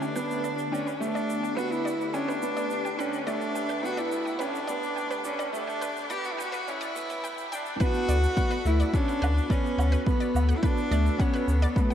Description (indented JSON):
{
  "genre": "piano and strings electronica",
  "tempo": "106 BPM",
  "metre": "4/4",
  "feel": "straight",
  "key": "D major",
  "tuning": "A4 = 440 Hz",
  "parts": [
    { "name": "rich cello", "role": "melody", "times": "0.0-11.9 s", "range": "A3 to G4", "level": "-30 LUFS", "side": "left 1 dB", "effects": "none" },
    { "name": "lush unison pad", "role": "sustained chords", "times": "0.0-11.9 s", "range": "D3 to B4", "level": "-37 LUFS", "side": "left 2 dB", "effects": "chorus, phaser" },
    { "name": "analog pluck", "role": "arpeggios", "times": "0.0-11.9 s", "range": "B4 to G5", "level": "-37 LUFS", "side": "right 2 dB", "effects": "chorus, sidechain pumping, tape echo" },
    { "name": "clear upright piano", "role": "riff", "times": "0.0-11.9 s", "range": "A3 to D4", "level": "-32 LUFS", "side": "right 2 dB", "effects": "none" },
    { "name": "shaker and woodblock", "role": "drums", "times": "0.0-11.9 s", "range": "none", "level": "-42 LUFS", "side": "right 4 dB", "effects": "none" },
    { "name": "electronic kick drum", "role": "drums", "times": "7.8-11.9 s", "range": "none", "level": "-26 LUFS", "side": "equal", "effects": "overdrive" },
    { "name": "warm sub bass", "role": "bass", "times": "8.1-11.7 s", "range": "D2", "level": "-23 LUFS", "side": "left 1 dB", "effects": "tube saturation, sidechain pumping" }
  ],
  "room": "moderate lush hall reverb, RT60 2.8 s",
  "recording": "dark, warm production, high-pass filter",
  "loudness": "-25 LUFS",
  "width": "side -10 dB against mid",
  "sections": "0.0-7.8 A section; 7.8-11.9 B section",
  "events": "build-up 0.0-7.8; filter sweep on analog synth pad 0.0-7.8; filter sweep on synth arpeggio sound 0.0-7.8; filter sweep 0.0-7.8; drop 7.8-11.9",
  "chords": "0.0 Gadd9/D; 7.8 D6"
}